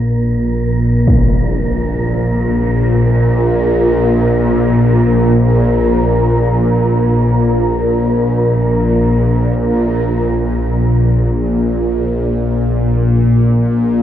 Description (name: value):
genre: dark ambient drone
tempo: free time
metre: none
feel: none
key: unclear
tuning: A4 = 443 Hz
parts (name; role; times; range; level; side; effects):
- bowed-like drone; drone; 0.0-14.0 s; Bb1 to Bb2; -12 LUFS; equal; built-in reverb, phaser
- wind-like tuned noise texture; texture; 0.0-10.1 s; Bb4; -22 LUFS; right 1 dB; built-in reverb
- impact; percussion; 1.1-1.2 s; none; -17 LUFS; equal; low-pass filter on sfx
room: wet huge ambient reverb, RT60 7.2 s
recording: worn, warbling old tape, cassette tape, warbly pitch drift, nothing above 10.5 kHz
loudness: -11 LUFS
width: side -10 dB against mid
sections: 0.0-10.1 A section; 10.1-14.0 B section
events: fade-in on synth texture 0.0-10.1; filter sweep on synth drone 0.0-10.1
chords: none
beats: free time